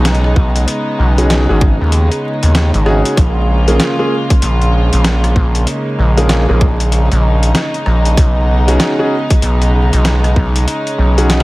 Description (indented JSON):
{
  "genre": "glitch hop",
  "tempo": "96 BPM",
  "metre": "4/4",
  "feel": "swing 62% on 16ths",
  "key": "unclear",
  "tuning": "A4 = 441 Hz",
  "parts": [
    { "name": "warm studio string section", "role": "sustained chords", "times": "0.0-11.4 s", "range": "C#3 to F4", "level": "-18 LUFS", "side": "equal", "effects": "sidechain pumping" },
    { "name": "gritty driven synth bass", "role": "bass", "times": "0.0-11.4 s", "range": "G#1 to D#2", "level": "-12 LUFS", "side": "equal", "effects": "overdrive" },
    { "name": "boom bap sampler-style drum kit", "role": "drums", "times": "0.1-11.4 s", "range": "hi-hat, rim click, snare drum", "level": "-19 LUFS", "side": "equal", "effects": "none" },
    { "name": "electronic kick drum", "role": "drums", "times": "0.4-10.5 s", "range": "none", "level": "-11 LUFS", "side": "equal", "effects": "overdrive" },
    { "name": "warm grand piano", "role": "stabs", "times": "1.2-11.4 s", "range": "Bb3 to G#4", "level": "-17 LUFS", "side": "equal", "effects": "sidechain pumping, digital delay" }
  ],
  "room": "little or no reverb",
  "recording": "vinyl crackle",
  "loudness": "-10 LUFS",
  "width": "side -20 dB against mid",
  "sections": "0.0-11.4 A section",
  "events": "none",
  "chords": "0.0 B69; 3.2 Bbm7; 8.2 B69",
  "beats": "0.05 | 0.67 1.30 1.92 2.55 | 3.17 3.80 4.42 5.05 | 5.67 6.30 6.92 7.55 | 8.17 8.80 9.42 10.05 | 10.67 11.30"
}